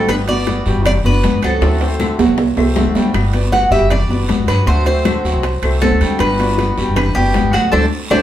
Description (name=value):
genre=latin, Cuban son and guajira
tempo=157 BPM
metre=4/4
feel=straight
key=G major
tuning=A4 = 440 Hz
part: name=Cuban tres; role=melody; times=0.0-8.2 s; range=F#4 to F#5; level=-18 LUFS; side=right 1 dB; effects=none
part: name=nylon-string guitar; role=second line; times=0.0-8.2 s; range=A3 to B4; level=-24 LUFS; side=right 1 dB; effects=none
part: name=picked swing-style acoustic guitar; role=accompaniment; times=0.0-8.2 s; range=D3 to F#4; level=-23 LUFS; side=left 3 dB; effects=none
part: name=bright concert grand piano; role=arpeggios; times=0.0-8.2 s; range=F#3 to G5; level=-23 LUFS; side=equal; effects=none
part: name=upright bass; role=bass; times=0.0-8.2 s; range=F#1 to D3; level=-17 LUFS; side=equal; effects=none
part: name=bongos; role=percussion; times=0.1-8.2 s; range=none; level=-27 LUFS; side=left 5 dB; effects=none
part: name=claves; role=percussion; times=0.1-8.2 s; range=none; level=-29 LUFS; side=left 8 dB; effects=none
part: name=congas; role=percussion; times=0.1-8.2 s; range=none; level=-23 LUFS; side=left 4 dB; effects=none
part: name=guiro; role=percussion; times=0.1-8.2 s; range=none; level=-32 LUFS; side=right 3 dB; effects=none
part: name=timbales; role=percussion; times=0.1-8.2 s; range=none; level=-20 LUFS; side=right 5 dB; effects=none
room=wet studio reverb, RT60 0.6 s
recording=heard from further back in the room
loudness=-12 LUFS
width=side -12 dB against mid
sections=0.0-8.2 A section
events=drum fill 1.6-3.1; band accent 7.7-8.2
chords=0.1 Gmaj7; 1.6 D7; 3.1 Gmaj7; 4.7 D7; 6.2 Gmaj7